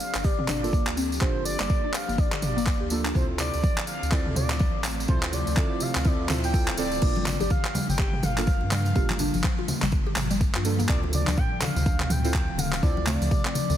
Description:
afro house; 124 BPM; 4/4; swing 60% on 16ths; G dorian; A4 = 442 Hz
expressive synth lead; melody; 0.0-13.8 s; C5 to G5; -32 LUFS; equal; wide subtle chorus, ping-pong delay
ethereal airy pad; sustained chords; 0.0-13.8 s; D3 to G4; -36 LUFS; equal; ensemble chorus, built-in reverb, sidechain pumping
deep mellow chord stab; stabs; 0.0-13.8 s; Bb3 to A4; -34 LUFS; right 2 dB; chorus, sidechain pumping, ping-pong delay
tambourine; percussion; 0.0-13.8 s; -36 LUFS; right 2 dB
round analog bass; bass; 0.1-13.8 s; D1 to G2; -30 LUFS; equal; sidechain pumping
deep house drum kit; drums; 0.1-13.5 s; crash cymbal, handclaps, toms; -31 LUFS; equal; studio reverb
mallet-like synth pluck; arpeggios; 0.2-13.7 s; A2 to G4; -33 LUFS; left 1 dB; phaser, lush chorus, sidechain pumping
electronic kick drum; drums; 0.2-13.4 s; -25 LUFS; equal; studio reverb
congas; percussion; 7.2-13.8 s; -32 LUFS; left 3 dB
light reverb; heavily compressed radio sound; -22 LUFS; side -11 dB against mid
0.0-7.0 A section; 7.0-13.8 B section
build-up 0.0-7.0; filter sweep on synth pluck 0.0-7.0; drop 7.0-13.8
0.0 Gm7; 3.1 Dm7; 7.0 Gm7; 10.9 Dm7

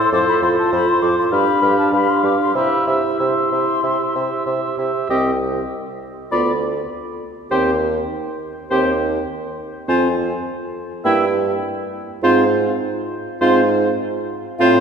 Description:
quick classical-period movement for wind quintet; 101 BPM; 4/4; rubato; C major; A4 = 440 Hz
mellow silver concert flute; melody; 0.0-14.8 s; F5 to D6; -24 LUFS; left 4 dB
warm oboe; second line; 0.0-14.8 s; C5 to F5; -23 LUFS; left 2 dB
clear clarinet; accompaniment; 0.0-14.8 s; E4 to A4; -24 LUFS; right 5 dB
mellow French horn; accompaniment; 0.0-14.8 s; Bb3 to F4; -24 LUFS; equal
warm bassoon; bass; 0.1-14.8 s; C2 to C3; -22 LUFS; right 2 dB
wet church reverb, RT60 3.5 s; recorded in a church or concert hall; -16 LUFS; side -7 dB against mid
0.0-5.1 A section; 5.1-14.8 B section
0.1 F; 1.3 G5; 2.6 C; 5.1 C5; 6.3 Bdim/D; 7.5 Cm/Eb; 9.9 Fm; 11.0 Edim/G; 12.2 Fm/Ab

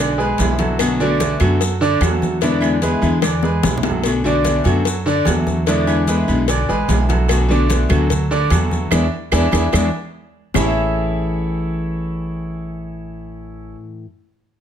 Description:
latin, Cuban son and guajira; 148 BPM; 4/4; straight; A major; A4 = 439 Hz
nylon-string guitar; accompaniment; 0.0-14.1 s; A2 to F#4; -22 LUFS; left 4 dB
bright concert grand piano; arpeggios; 0.0-13.7 s; D3 to E5; -20 LUFS; right 2 dB; slapback echo
upright bass; bass; 0.0-13.7 s; A1 to F#2; -20 LUFS; right 1 dB
congas; percussion; 0.2-10.6 s; -26 LUFS; left 1 dB
maracas; percussion; 0.2-10.7 s; -31 LUFS; left 4 dB
cowbell and bongos; percussion; 0.4-10.6 s; -26 LUFS; left 12 dB
timbales and agogo bells; percussion; 0.4-10.6 s; -28 LUFS; right 3 dB
claves; percussion; 0.8-3.4, 7.3-10.6 s; -28 LUFS; right 6 dB
little or no reverb; close, detailed microphones; -15 LUFS; side -9 dB against mid
0.0-4.0 A section; 4.0-10.5 B section; 10.5-13.8 C section
drum fill 3.2-4.0, 9.9-10.5; band accent 8.9-10.5
0.0 E7; 0.8 Bm7; 2.4 E7; 4.0 Bm7; 5.7 E7; 7.3 Bm7; 8.9 E7; 10.5 Amaj7

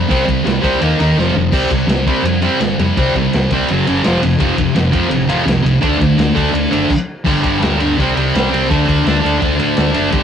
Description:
garage rock duo or trio; 168 BPM; 4/4; straight; A4 = 440 Hz
thick fuzz guitar; riff; 0.0-10.2 s; F2 to Eb4; -14 LUFS; equal; distortion
hollow-body short-scale fingered electric bass; bass; 0.0-10.2 s; F1 to A2; -21 LUFS; equal; tube saturation
vintage drum kit; drums; 0.1-10.2 s; crash cymbal, kick drum, ride cymbal, snare drum, toms; -20 LUFS; equal
moderate studio reverb, RT60 0.6 s; rough rehearsal-room recording; -12 LUFS; side -8 dB against mid
0.0-7.3 A section; 7.3-10.2 B section
drum fill 1.2-1.5; stop 6.9-7.3
0.0 C5; 0.8 Eb5; 1.2 F5; 1.5 C5; 3.7 F#5; 4.0 F5; 4.4 F; 5.8 D5; 7.3 G5; 8.0 C5; 8.7 D5

